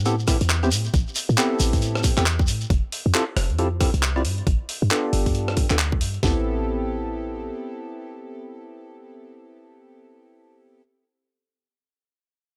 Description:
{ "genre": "UK garage, two-step garage", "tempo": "136 BPM", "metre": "4/4", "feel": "swing 61% on 16ths", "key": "A minor", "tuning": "A4 = 441 Hz", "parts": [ { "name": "short 808-style bass", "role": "bass", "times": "0.0-7.5 s", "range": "F1 to A2", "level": "-26 LUFS", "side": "equal", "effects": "none" }, { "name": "percussive organ stab", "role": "stabs", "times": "0.1-10.8 s", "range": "B3 to D5", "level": "-29 LUFS", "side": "equal", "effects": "analog chorus, vintage 12-bit sampler grit" }, { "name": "breakbeat sampler-style drum kit", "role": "drums", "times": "0.1-6.2 s", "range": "handclaps, hi-hat, rim click", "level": "-29 LUFS", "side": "equal", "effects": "none" }, { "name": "shekere", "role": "percussion", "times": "0.1-2.7 s", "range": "none", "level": "-32 LUFS", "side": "equal", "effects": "none" }, { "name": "garage drum kit", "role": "drums", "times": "0.3-6.4 s", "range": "hi-hat, kick drum, snare drum", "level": "-24 LUFS", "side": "equal", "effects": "none" } ], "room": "little or no reverb", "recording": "dry, gritty hardware recording", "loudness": "-23 LUFS", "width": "mono", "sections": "0.0-6.2 A section; 6.2-9.8 B section", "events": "filter sweep on synth stab 0.0-6.2", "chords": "0.0 Am9; 2.7 Fmaj9; 4.2 G9; 6.2 Am9" }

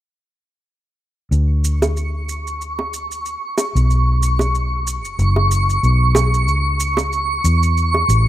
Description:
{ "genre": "sunset chillout", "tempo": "93 BPM", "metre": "4/4", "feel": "swing 56% on 16ths", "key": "unclear", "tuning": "A4 = 440 Hz", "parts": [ { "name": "vintage muted fingered electric bass", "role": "bass", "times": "1.3-8.3 s", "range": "F#1 to E2", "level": "-16 LUFS", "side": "equal", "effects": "none" }, { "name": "shaker", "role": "drums", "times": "1.3-8.2 s", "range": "none", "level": "-28 LUFS", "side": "right 5 dB", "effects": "overdrive" }, { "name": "twinkling granular texture", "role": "texture", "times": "1.9-8.3 s", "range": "C#6", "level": "-21 LUFS", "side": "right 1 dB", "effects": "built-in reverb, shimmer reverb" }, { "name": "bongos", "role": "percussion", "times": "1.8-8.1 s", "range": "none", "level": "-22 LUFS", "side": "right 1 dB", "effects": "none" } ], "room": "light reverb, digital ambience", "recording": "rough home demo mix", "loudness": "-16 LUFS", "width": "side -13 dB against mid", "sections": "1.3-8.3 A section", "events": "none", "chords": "1.3 Bmadd9 (rootless); 3.9 B5; 6.5 A/C# (rootless)" }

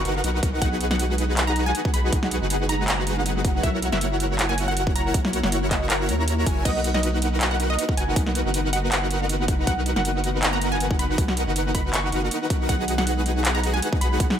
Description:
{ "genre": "future bass", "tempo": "159 BPM", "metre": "4/4", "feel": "swing 54% on 16ths, half-time", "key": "B major", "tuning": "A4 = 442 Hz", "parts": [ { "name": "wide unison pluck", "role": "melody", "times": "0.0-14.2 s", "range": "A#4 to C#6", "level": "-30 LUFS", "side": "right 1 dB", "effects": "sidechain pumping, dub echo" }, { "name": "shimmering ambient pad", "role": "sustained chords", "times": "0.1-14.4 s", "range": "D#3 to E4", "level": "-35 LUFS", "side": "left 1 dB", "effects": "chorus, built-in reverb, phaser, sidechain pumping" }, { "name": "airy dreamy lead", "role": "arpeggios", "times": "0.0-14.4 s", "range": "F#5 to A#5", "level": "-34 LUFS", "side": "equal", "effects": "chorus, sidechain pumping, tape echo" }, { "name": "dense compressed supersaw", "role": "riff", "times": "0.0-14.4 s", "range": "D#4 to A#5", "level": "-27 LUFS", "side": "equal", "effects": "sidechain pumping" }, { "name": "saturated sub bass", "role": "bass", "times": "0.0-14.4 s", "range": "F#1 to D#2", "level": "-26 LUFS", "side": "equal", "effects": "sidechain pumping" }, { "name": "thumb-piano-like synth pluck", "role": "arpeggios", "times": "0.1-14.3 s", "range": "G#3 to D#5", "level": "-35 LUFS", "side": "right 4 dB", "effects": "none" }, { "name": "pop drum kit", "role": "drums", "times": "0.1-14.4 s", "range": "crash cymbal, handclaps, hi-hat, snare drum", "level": "-27 LUFS", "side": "equal", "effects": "none" }, { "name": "electronic kick drum", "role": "drums", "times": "0.4-14.3 s", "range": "none", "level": "-24 LUFS", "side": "equal", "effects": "overdrive" } ], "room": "digital ambience", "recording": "none", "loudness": "-20 LUFS", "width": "side -9 dB against mid", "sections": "0.0-14.4 A section", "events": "none", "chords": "0.0 Bmaj7; 0.6 G#m7/B; 3.6 F#7; 6.7 Bmaj7; 12.7 G#m7/B" }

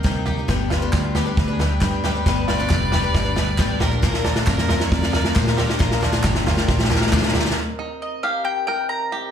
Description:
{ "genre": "indie folk with a building arrangement", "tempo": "136 BPM", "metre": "4/4", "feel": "straight", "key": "C minor", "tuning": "A4 = 440 Hz", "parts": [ { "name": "fingerpicked steel-string acoustic guitar", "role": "accompaniment", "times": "0.0-0.5 s", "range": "C3 to Bb4", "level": "-35 LUFS", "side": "left 2 dB", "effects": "none" }, { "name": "picked twelve-string acoustic guitar", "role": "accompaniment", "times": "0.0-7.6 s", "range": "G2 to B4", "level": "-26 LUFS", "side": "left 7 dB", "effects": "slapback echo" }, { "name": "bluegrass banjo", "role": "arpeggios", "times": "0.0-9.3 s", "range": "D4 to B4", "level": "-32 LUFS", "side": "right 6 dB", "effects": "slapback echo" }, { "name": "fingered electric bass", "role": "bass", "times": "0.0-7.5 s", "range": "F1 to Bb2", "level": "-23 LUFS", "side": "equal", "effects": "none" }, { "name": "natural country drum kit", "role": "drums", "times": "0.0-7.6 s", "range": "kick drum, snare drum, toms", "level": "-20 LUFS", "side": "equal", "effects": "none" }, { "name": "clear fiddle", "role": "second line", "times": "0.5-7.6 s", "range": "F4 to D5", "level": "-30 LUFS", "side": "right 3 dB", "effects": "slapback echo" }, { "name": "warm brass ensemble", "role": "sustained chords", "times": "0.5-9.3 s", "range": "C3 to C6", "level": "-32 LUFS", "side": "left 1 dB", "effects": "none" }, { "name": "group handclap", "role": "percussion", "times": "0.9-7.2 s", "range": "none", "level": "-32 LUFS", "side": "right 2 dB", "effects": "none" }, { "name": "tambourine", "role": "percussion", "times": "0.9-7.2 s", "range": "none", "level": "-40 LUFS", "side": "right 5 dB", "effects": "none" }, { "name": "mandolin", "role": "melody", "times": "8.0-9.3 s", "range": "Eb5 to Bb5", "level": "-22 LUFS", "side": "left 2 dB", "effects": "slapback echo" } ], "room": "light reverb", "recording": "live gig heard through the venue's PA, club reverb", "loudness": "-18 LUFS", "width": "side -8 dB against mid", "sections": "0.0-7.6 A section; 7.6-9.3 B section", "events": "build-up 0.0-7.6; drum fill 0.0-7.6", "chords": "0.5 G; 3.8 Bb; 7.6 Cm7" }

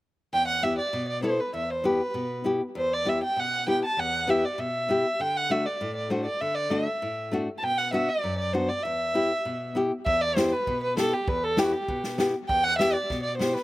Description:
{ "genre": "klezmer", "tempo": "99 BPM", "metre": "2/4", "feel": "straight", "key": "E minor", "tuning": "A4 = 440 Hz", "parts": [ { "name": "dark violin", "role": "melody", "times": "0.3-13.6 s", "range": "F#4 to A5", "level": "-26 LUFS", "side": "right 1 dB", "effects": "none" }, { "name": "nylon-string guitar", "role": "accompaniment", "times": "0.3-13.6 s", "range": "E2 to A4", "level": "-28 LUFS", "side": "left 2 dB", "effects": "slapback echo" }, { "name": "swinging big-band drum kit", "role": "drums", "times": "10.1-13.6 s", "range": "kick drum, snare drum", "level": "-31 LUFS", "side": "equal", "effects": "none" } ], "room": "little or no reverb", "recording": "recorded outdoors, with no room sound", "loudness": "-24 LUFS", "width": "side -16 dB against mid", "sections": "0.3-10.1 A section; 10.1-13.6 A section", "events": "none", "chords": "0.3 Em; 5.2 D; 7.6 Bm; 8.8 Em" }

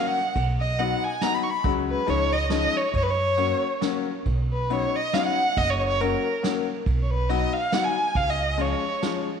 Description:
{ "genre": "musette waltz", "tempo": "139 BPM", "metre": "3/4", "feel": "swing 54% on 8ths, rubato", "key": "F# major", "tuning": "A4 = 442 Hz", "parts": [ { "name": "warm violin", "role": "melody", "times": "0.0-9.3 s", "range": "A#4 to C#6", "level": "-25 LUFS", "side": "right 1 dB", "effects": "slapback echo" }, { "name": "bright upright piano", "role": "accompaniment", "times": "0.0-9.3 s", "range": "E#3 to F#4", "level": "-28 LUFS", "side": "left 10 dB", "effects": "none" }, { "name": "upright bass", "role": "bass", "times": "0.4-8.7 s", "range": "F#1 to F#2", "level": "-27 LUFS", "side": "right 1 dB", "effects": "transformer saturation" }, { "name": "vintage brush drum kit", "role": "drums", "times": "0.4-9.1 s", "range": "kick drum, ride cymbal, snare drum", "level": "-32 LUFS", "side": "right 4 dB", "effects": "none" } ], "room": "moderate echo chamber reverb, RT60 2.2 s", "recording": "1960s-style stereo", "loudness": "-22 LUFS", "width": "side -7 dB against mid", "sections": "0.0-9.4 A section", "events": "none", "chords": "0.4 B; 1.6 C#sus4; 2.1 C#add9; 2.9 F#; 4.3 Badd9; 5.6 F#; 6.9 B; 8.2 C#" }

